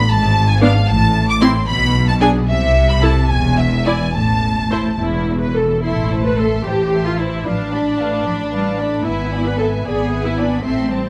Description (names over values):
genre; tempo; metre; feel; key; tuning
quick classical-period movement for string orchestra; 75 BPM (dotted quarters); 6/8; rubato; A minor; A4 = 440 Hz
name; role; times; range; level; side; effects
warm symphonic violin section; melody; 0.0-11.1 s; E5 to D6; -26 LUFS; equal; none
warm symphonic violin section; second line; 0.0-11.1 s; A4 to D6; -27 LUFS; equal; none
rich studio double bass section; bass; 0.1-11.1 s; E1 to C2; -22 LUFS; equal; none
rich symphonic cello section; bass; 0.1-11.1 s; E2 to B3; -23 LUFS; equal; none
clear symphonic viola section; accompaniment; 0.6-11.1 s; B3 to D5; -22 LUFS; equal; none
room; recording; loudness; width
light reverb; close, detailed microphones, vinyl crackle; -17 LUFS; mono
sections
0.0-5.8 A section; 5.8-11.1 A section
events
none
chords
0.1 G#dim; 0.9 Am; 1.7 G#dim/B; 2.5 Am/C; 3.3 E7; 4.1 A5; 5.8 Am; 7.4 Bm7b5/A; 9.0 E7/G#